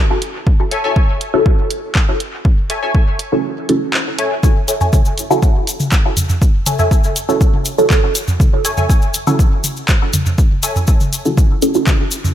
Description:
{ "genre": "dub techno", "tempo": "121 BPM", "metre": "4/4", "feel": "straight", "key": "F# minor", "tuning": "A4 = 440 Hz", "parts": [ { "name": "punchy analog drum machine", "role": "drums", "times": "0.2-12.2 s", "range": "handclaps, hi-hat", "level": "-21 LUFS", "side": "equal", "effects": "dub echo" }, { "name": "electronic kick drum", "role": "drums", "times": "0.5-12.0 s", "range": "none", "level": "-13 LUFS", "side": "equal", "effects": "none" }, { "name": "filtered dub chord stab", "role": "riff", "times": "0.7-10.7 s", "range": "A4 to G#5", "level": "-22 LUFS", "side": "left 2 dB", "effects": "ensemble chorus, sidechain pumping, dub echo" }, { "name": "filtered dub chord stab", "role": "stabs", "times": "1.3-12.0 s", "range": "C#4 to A4", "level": "-18 LUFS", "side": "right 1 dB", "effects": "phaser, sidechain pumping, dub echo" }, { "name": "electronic toms", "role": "percussion", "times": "4.4-12.3 s", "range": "none", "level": "-20 LUFS", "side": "equal", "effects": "sidechain pumping on toms" }, { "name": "tube shaker", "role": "percussion", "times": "4.4-12.3 s", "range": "none", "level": "-23 LUFS", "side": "left 4 dB", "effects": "none" } ], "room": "light reverb", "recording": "none", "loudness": "-12 LUFS", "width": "side -11 dB against mid", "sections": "0.0-12.3 A section", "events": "break 3.4-4.4", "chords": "0.0 F#m7" }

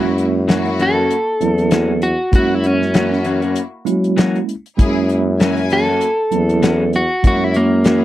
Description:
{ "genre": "straight-eighth soul blues", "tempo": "98 BPM", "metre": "4/4", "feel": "swing 56% on 16ths", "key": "F# mixolydian", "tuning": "A4 = 440 Hz", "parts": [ { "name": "mellow tine electric piano", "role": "accompaniment", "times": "0.0-8.0 s", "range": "F#3 to E4", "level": "-21 LUFS", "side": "right 4 dB", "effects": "medium stereo tremolo" }, { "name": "rich studio string section", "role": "sustained chords", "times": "0.0-8.0 s", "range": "A#3 to G#5", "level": "-27 LUFS", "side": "left 2 dB", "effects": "none" }, { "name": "electric guitar through a small old amp", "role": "stabs", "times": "0.0-8.0 s", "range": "E3 to F#4", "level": "-22 LUFS", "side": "left 5 dB", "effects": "none" }, { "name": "clear tuba", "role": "bass", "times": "0.0-8.0 s", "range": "E2 to F#3", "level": "-18 LUFS", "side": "equal", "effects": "none" }, { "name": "damped 70s drum kit", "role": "drums", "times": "0.2-8.0 s", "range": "hi-hat, kick drum, snare drum", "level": "-15 LUFS", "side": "left 1 dB", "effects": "none" }, { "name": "electric guitar at the edge of break-up", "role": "melody", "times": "0.8-8.0 s", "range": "A#3 to A4", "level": "-17 LUFS", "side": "equal", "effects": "none" } ], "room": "little or no reverb", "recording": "dry, close 1970s-style studio recording", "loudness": "-14 LUFS", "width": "side -14 dB against mid", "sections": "0.0-8.0 A section", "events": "clean electric guitar solo 0.0-8.0", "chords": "0.0 F#7" }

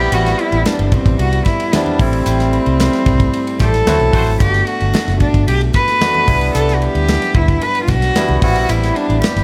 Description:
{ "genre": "polished 1980s jazz-funk pop", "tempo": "112 BPM", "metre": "4/4", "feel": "straight", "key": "unclear", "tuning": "A4 = 441 Hz", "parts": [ { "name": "warm cello", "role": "melody", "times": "0.0-9.4 s", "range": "C4 to B4", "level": "-19 LUFS", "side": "equal", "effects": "none" }, { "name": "barky tine electric piano", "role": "accompaniment", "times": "0.0-9.4 s", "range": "F#3 to F#4", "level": "-23 LUFS", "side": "equal", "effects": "lush chorus" }, { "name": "vintage muted fingered electric bass", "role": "bass", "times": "0.0-9.4 s", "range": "F#1 to D2", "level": "-19 LUFS", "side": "equal", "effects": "none" }, { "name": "modern studio drum kit", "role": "drums", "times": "0.1-9.4 s", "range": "hi-hat, kick drum, ride cymbal, snare drum", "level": "-21 LUFS", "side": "equal", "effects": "gated reverb" }, { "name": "congas", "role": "percussion", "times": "0.1-9.3 s", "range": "none", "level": "-30 LUFS", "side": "equal", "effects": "none" }, { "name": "mellow horn section", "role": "second line", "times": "3.6-4.3 s", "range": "A3 to C5", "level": "-27 LUFS", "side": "equal", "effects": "none" } ], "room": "studio ambience", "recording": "none", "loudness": "-15 LUFS", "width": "mono", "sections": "0.0-9.4 A section", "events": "band accent 2.3-4.4", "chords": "0.0 Am7; 3.9 D7; 4.4 Gmaj7; 6.3 Cmaj9; 8.4 Am7" }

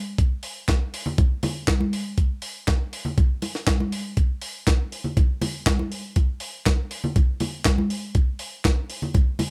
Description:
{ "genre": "disco", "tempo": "120 BPM", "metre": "4/4", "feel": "straight", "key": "none", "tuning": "none", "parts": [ { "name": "jungle sampler-style drum kit", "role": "drums", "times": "0.2-9.5 s", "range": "handclaps, hi-hat, kick drum, snare drum", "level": "-25 LUFS", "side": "equal", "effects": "none" }, { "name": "congas", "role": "percussion", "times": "0.7-9.5 s", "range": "none", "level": "-31 LUFS", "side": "equal", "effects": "none" } ], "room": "light reverb", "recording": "none", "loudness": "-24 LUFS", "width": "mono", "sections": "0.0-4.2 A section; 4.2-9.5 B section", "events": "none", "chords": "none" }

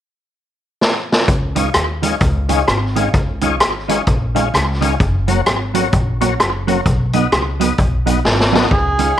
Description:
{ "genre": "ska", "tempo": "129 BPM", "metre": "4/4", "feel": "swing 60% on 8ths", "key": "Db mixolydian", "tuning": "A4 = 437 Hz", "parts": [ { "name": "street-band drum kit", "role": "drums", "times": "0.8-9.1 s", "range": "hi-hat, kick drum, rim click, snare drum", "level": "-16 LUFS", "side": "equal", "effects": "slapback echo" }, { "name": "upright bass", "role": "bass", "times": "1.3-9.1 s", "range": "Gb1 to Eb2", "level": "-20 LUFS", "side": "equal", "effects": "none" }, { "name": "mellow electric guitar", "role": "accompaniment", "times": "1.6-9.1 s", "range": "Eb3 to Gb4", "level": "-22 LUFS", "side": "right 9 dB", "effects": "analog chorus" }, { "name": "tonewheel organ", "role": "stabs", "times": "1.6-9.1 s", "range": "Db4 to Eb5", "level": "-22 LUFS", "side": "left 8 dB", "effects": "chorus vibrato, slow rotary speaker" }, { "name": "overdriven harmonica", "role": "melody", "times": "8.7-9.2 s", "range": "Ab4", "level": "-17 LUFS", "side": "right 2 dB", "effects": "none" } ], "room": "moderate echo chamber reverb, RT60 1.2 s, small room reverb", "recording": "1960s-style stereo with parts hard left and right", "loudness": "-14 LUFS", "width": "side -11 dB against mid", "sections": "0.0-1.3 A section; 1.3-8.7 B section", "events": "drum fill 0.8-1.3, 8.2-8.7", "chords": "0.0 N.C.; 1.3 Dbadd9; 5.0 Gb; 6.9 Cb" }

